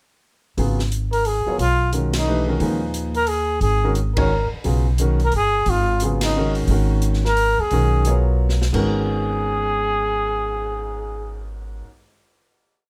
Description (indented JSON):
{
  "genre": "modal jazz",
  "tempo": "177 BPM",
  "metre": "3/4",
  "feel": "swing 63% on 8ths",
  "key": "G# dorian",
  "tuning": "A4 = 441 Hz",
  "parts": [
    { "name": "warm grand piano", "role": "accompaniment", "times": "0.6-11.9 s", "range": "G#2 to C#5", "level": "-27 LUFS", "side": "equal", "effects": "none" },
    { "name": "upright bass", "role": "bass", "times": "0.6-11.8 s", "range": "G1 to D#2", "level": "-24 LUFS", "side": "equal", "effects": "none" },
    { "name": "open jazz drum kit", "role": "drums", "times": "0.6-10.7 s", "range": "crash cymbal, cymbal swell, hi-hat, kick drum, ride cymbal, snare drum", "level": "-32 LUFS", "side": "equal", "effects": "none" },
    { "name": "breathy trumpet", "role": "melody", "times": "1.1-11.5 s", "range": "D#4 to A#4", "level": "-24 LUFS", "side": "equal", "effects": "plate reverb" }
  ],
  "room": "light reverb",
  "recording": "close, detailed microphones",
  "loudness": "-20 LUFS",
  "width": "mono",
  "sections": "0.6-8.7 A section; 8.7-10.8 final chord",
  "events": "band accent 2.1, 4.1, 6.2; drum fill 8.4-8.7",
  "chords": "0.6 G#m11"
}